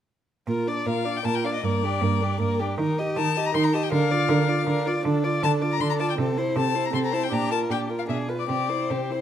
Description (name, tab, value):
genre	quick classical-period movement for string quartet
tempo	158 BPM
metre	3/4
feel	rubato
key	Bb major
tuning	A4 = 440 Hz
part	warm violin	second line	0.5-9.2 s	G4 to Eb5	-28 LUFS	left 2 dB	none
part	warm viola	accompaniment	0.5-9.2 s	Bb3 to G4	-29 LUFS	right 2 dB	none
part	clear cello	bass	0.5-9.2 s	G2 to Eb3	-26 LUFS	right 4 dB	none
part	clear violin	melody	0.9-9.2 s	C5 to C6	-28 LUFS	left 8 dB	none
room	moderate recital hall reverb, RT60 1.3 s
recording	none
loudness	-22 LUFS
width	side -10 dB against mid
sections	0.5-9.2 A section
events	none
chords	0.5 Bb; 1.6 Gm; 2.8 Eb; 3.9 Bb/D; 6.2 Am/C; 7.3 Gm7/Bb; 8.1 Bdim7; 8.5 C